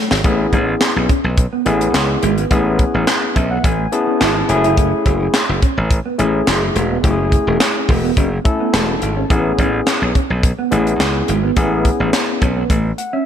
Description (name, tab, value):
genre	early-eighties boogie funk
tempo	106 BPM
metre	4/4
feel	straight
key	unclear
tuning	A4 = 436 Hz
part	mellow electric guitar	riff	0.0-13.2 s	G#3 to E4	-23 LUFS	right 3 dB	wide subtle chorus
part	glassy slap bass	bass	0.1-12.9 s	E1 to C#2	-18 LUFS	equal	none
part	tight funk drum kit	drums	0.1-13.1 s	handclaps, hi-hat, kick drum, snare drum	-17 LUFS	equal	none
part	overdriven tine electric piano	accompaniment	0.2-13.3 s	A3 to A5	-19 LUFS	left 2 dB	none
room	moderate lush hall reverb, RT60 1.7 s, studio reverb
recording	big arena sound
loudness	-14 LUFS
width	side -9 dB against mid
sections	0.2-13.3 A section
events	drum fill 0.0; tine electric piano fill 3.1-4.8, 8.5-9.3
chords	0.2 Amaj9; 4.5 F#m7; 9.3 Amaj9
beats	| 0.24 0.81 1.38 1.94 | 2.51 3.08 3.64 4.21 | 4.77 5.34 5.91 6.47 | 7.04 7.60 8.17 8.74 | 9.30 9.87 10.43 11.00 | 11.57 12.13 12.70